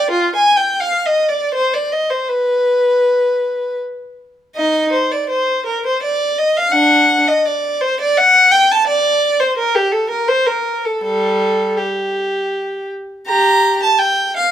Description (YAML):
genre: classical, baroque-style suite movement for unaccompanied violin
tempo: 82 BPM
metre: 3/4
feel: rubato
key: G minor from 4.5 s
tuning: A4 = 440 Hz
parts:
  - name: rich violin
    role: solo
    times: 0.0-14.5 s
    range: G3 to Bb5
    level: -13 LUFS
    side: equal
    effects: none
room: light reverb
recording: close, detailed microphones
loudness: -13 LUFS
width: side -10 dB against mid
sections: 0.0-13.3 A section; 13.3-14.5 B section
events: none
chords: none